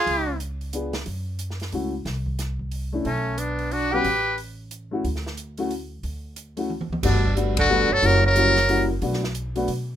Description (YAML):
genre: jazz, small-group swing and bop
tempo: 181 BPM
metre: 3/4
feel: swing 62% on 8ths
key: unclear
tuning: A4 = 440 Hz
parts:
  - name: trumpet with metal mute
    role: melody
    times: 0.0-0.4, 3.1-4.4, 7.0-8.9 s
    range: C#4 to B4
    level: -22 LUFS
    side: left 2 dB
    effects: none
  - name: breathy tenor saxophone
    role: second line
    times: 0.0-0.4, 3.1-4.4, 7.0-8.9 s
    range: B2 to G4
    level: -26 LUFS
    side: right 4 dB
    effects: none
  - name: upright bass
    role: bass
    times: 0.1-10.0 s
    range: F#1 to B2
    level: -27 LUFS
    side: equal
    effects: none
  - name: open jazz drum kit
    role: drums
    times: 0.1-9.8 s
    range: crash cymbal, hi-hat, kick drum, ride cymbal, snare drum, toms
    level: -33 LUFS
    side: right 1 dB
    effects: none
  - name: warm upright piano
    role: accompaniment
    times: 0.7-9.7 s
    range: F#3 to G#4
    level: -26 LUFS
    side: left 2 dB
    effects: none
room: little or no reverb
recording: minimal, uncompressed stereo recording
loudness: -21 LUFS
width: side -11 dB against mid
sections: 0.0-7.0 A section; 7.0-10.0 B section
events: drum fill 6.7-7.0; band accent 7.5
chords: 0.1 C#7b9; 1.1 F#m7; 2.1 N.C.; 3.1 Bm9; 4.0 A7sus2; 5.0 N.C.; 7.0 Gmaj7; 8.0 F#7b9; 9.0 Bm7